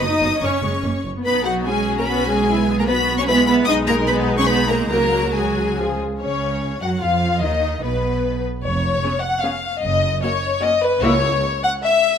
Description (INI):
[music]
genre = quick classical-period movement for string orchestra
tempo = 148 BPM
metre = 3/4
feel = rubato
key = F# major from 3.7 s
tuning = A4 = 440 Hz
[part]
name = rich symphonic violin section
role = melody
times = 0.0-11.2 s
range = F#4 to D#6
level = -24 LUFS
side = left 4 dB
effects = none
[part]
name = rich chamber violin section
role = second line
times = 0.0-12.2 s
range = F#4 to F#5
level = -21 LUFS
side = left 3 dB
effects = none
[part]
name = rich chamber viola section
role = accompaniment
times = 0.0-11.2 s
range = E#3 to G#4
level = -25 LUFS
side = left 1 dB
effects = none
[part]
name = rich studio cello section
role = bass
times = 0.0-11.4 s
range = C#2 to D#4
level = -23 LUFS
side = right 3 dB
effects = none
[part]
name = rich studio double bass section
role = bass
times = 0.0-11.4 s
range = E#1 to F#2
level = -26 LUFS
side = right 3 dB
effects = none
[sound]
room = moderate concert hall reverb, RT60 2.0 s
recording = close, detailed microphones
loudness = -17 LUFS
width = side -8 dB against mid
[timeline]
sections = 0.0-6.2 A section; 6.2-12.2 B section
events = none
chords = 0.0 F#sus4; 0.8 F#5; 1.3 B; 2.5 E/B; 3.7 B; 4.5 G#m/B; 4.9 C#sus4; 5.8 C#; 6.2 F#5/C#; 7.4 B; 8.6 C#7/E#; 9.8 F#; 11.0 F#7/C#